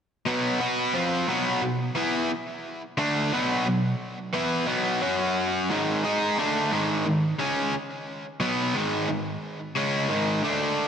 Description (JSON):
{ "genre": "rock", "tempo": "88 BPM", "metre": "4/4", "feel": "straight", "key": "B dorian", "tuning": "A4 = 441 Hz", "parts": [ { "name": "cranked stack guitar", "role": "solo", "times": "0.3-10.9 s", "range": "G#2 to B4", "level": "-23 LUFS", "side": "equal", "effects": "overdrive, slapback echo, digital delay" } ], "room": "wet lush hall reverb, RT60 2.3 s", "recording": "big arena sound", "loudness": "-23 LUFS", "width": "side -8 dB against mid", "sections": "0.3-10.9 A section", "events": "none", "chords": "0.3 Bm; 5.0 F#5; 5.7 G#5" }